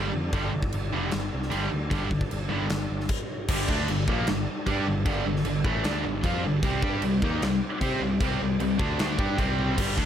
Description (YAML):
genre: hard rock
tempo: 152 BPM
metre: 4/4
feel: straight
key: unclear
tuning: A4 = 440 Hz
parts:
  - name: overdriven tonewheel organ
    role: sustained chords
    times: 0.0-10.1 s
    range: G3 to D5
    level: -38 LUFS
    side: equal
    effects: slow rotary speaker, chorus vibrato
  - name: high-gain distorted guitar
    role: riff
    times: 0.0-10.1 s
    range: G2 to C5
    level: -28 LUFS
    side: equal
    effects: distortion
  - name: modern bright picked electric bass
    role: bass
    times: 0.0-10.1 s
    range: F1 to C3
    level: -31 LUFS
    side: equal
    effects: none
  - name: huge arena drum kit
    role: drums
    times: 0.3-10.1 s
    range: crash cymbal, kick drum, snare drum, toms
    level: -29 LUFS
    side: equal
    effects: none
  - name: distorted electric guitar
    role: riff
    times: 3.5-9.8 s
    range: G2 to C5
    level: -32 LUFS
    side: left 1 dB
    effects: distortion
room: light reverb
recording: none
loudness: -24 LUFS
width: side -9 dB against mid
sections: 0.0-3.5 A section; 3.5-9.8 B section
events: stop 3.1-3.5; drum fill 9.6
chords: 0.0 G5; 3.5 Gm; 6.6 C5